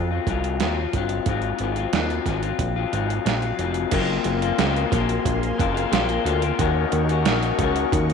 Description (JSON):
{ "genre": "indie pop, bedroom pop", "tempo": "90 BPM", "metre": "4/4", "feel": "straight", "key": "unclear", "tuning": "A4 = 439 Hz", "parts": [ { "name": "electric guitar through a small old amp", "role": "accompaniment", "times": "0.0-8.1 s", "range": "Ab2 to Gb4", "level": "-24 LUFS", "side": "left 11 dB", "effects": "wide subtle chorus, warbly pitch drift" }, { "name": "fat analog bass", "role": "bass", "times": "0.0-8.1 s", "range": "F1 to F2", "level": "-25 LUFS", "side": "right 2 dB", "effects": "none" }, { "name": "dusty soul sampler-style drum kit", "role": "drums", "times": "0.3-8.1 s", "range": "crash cymbal, hi-hat, kick drum, snare drum", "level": "-26 LUFS", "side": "right 6 dB", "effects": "overdrive" }, { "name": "string machine, cellos", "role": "sustained chords", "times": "3.9-8.1 s", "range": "Bb4 to Db6", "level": "-30 LUFS", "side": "right 1 dB", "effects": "ensemble chorus" } ], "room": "light reverb, digital ambience", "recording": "1960s-style stereo with parts hard left and right", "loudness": "-20 LUFS", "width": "side -6 dB against mid", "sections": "0.0-3.9 A section; 3.9-8.1 B section", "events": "none", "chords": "0.0 Ab13; 3.9 Gbmaj9#11; 6.6 Ebm7", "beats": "0.60 | 1.26 1.93 2.60 3.26 | 3.93 4.59 5.26 5.93 | 6.59 7.26 7.93" }